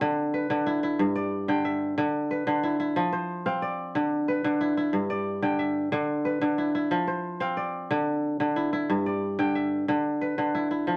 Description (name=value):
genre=west african traditional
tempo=121 BPM (dotted quarters)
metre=12/8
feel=straight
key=unclear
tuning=A4 = 444 Hz
part: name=kora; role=solo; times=0.0-11.0 s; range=G2 to G5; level=-27 LUFS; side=equal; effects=none
room=moderate studio reverb, RT60 0.7 s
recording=none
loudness=-27 LUFS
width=mono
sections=0.0-11.0 A section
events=none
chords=0.0 Bmadd11/D; 1.0 G5; 2.0 Bmadd11/D; 3.0 F5; 3.9 Bmadd11/D; 4.9 G5; 5.9 Bmadd11/D; 6.9 F5; 7.9 Dsus2; 8.9 G5; 9.9 Bmadd11/D